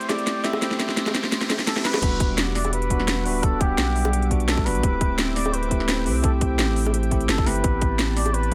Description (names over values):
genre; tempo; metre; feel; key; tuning
liquid drum and bass; 171 BPM; 4/4; straight; E minor; A4 = 439 Hz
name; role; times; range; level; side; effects
trumpet with cup mute; melody; 0.0-8.5 s; G4 to E5; -31 LUFS; equal; digital delay
bell-like tine electric piano; accompaniment; 0.0-8.5 s; G3 to F#5; -30 LUFS; equal; none
lush unison pad; sustained chords; 0.0-8.5 s; G3 to D6; -36 LUFS; equal; chorus, vintage 12-bit sampler grit
warm sub bass; bass; 0.0-8.5 s; D1 to C2; -28 LUFS; equal; high-pass filter
drum and bass drum kit; drums; 0.0-8.5 s; crash cymbal, hi-hat, snare drum; -28 LUFS; equal; none
riser; sound effects; 0.0-2.0 s; none; -36 LUFS; equal; none
bongos; percussion; 0.1-8.3 s; none; -32 LUFS; equal; none
electronic kick drum; drums; 2.0-8.5 s; none; -25 LUFS; equal; none
room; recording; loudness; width
light reverb, digital ambience; none; -22 LUFS; mono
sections
0.0-2.0 A section; 2.0-8.5 B section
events
build-up 0.0-2.0; drum fill 0.0-2.0; riser 0.0-2.0; drop 2.0-8.5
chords
0.0 D9sus4; 2.0 Em9; 4.8 D9sus4; 7.6 Am9